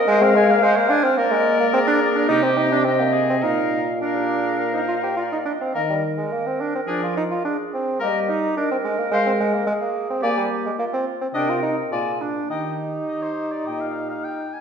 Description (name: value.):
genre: quick classical-period movement for wind quintet.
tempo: 106 BPM.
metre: 4/4.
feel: straight.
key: Eb major.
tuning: A4 = 440 Hz.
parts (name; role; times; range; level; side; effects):
silver concert flute; melody; 0.0-13.9 s; D5 to Ab5; -26 LUFS; left 5 dB; none.
bright oboe; second line; 0.0-14.6 s; G4 to Ab5; -28 LUFS; left 4 dB; none.
clear clarinet; accompaniment; 0.0-14.5 s; F4 to F5; -28 LUFS; right 4 dB; none.
warm bassoon; bass; 0.0-14.5 s; G3 to G4; -22 LUFS; right 1 dB; none.
mellow French horn; accompaniment; 0.1-14.1 s; Bb2 to Bb3; -26 LUFS; equal; none.
room: wet recital hall reverb, RT60 1.5 s.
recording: heard from further back in the room.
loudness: -19 LUFS.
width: side -7 dB against mid.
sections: 0.0-14.6 A section.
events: none.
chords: 0.1 Fm/Ab; 2.3 Cm; 3.4 Bb; 5.7 Eb5; 6.9 Ddim/F; 8.0 Eb/G; 9.1 Fm/Ab; 10.2 Bb7(no3); 11.3 Cm; 11.9 Bb7; 12.5 Eb.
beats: 0.07 0.62 | 1.18 1.73 2.29 2.86 | 3.43 4.01 4.59 5.17 | 5.75 6.32 6.88 7.44 | 8.01 8.56 9.11 9.67 | 10.22 10.78 11.34 11.91 | 12.49 13.07 13.66 14.24.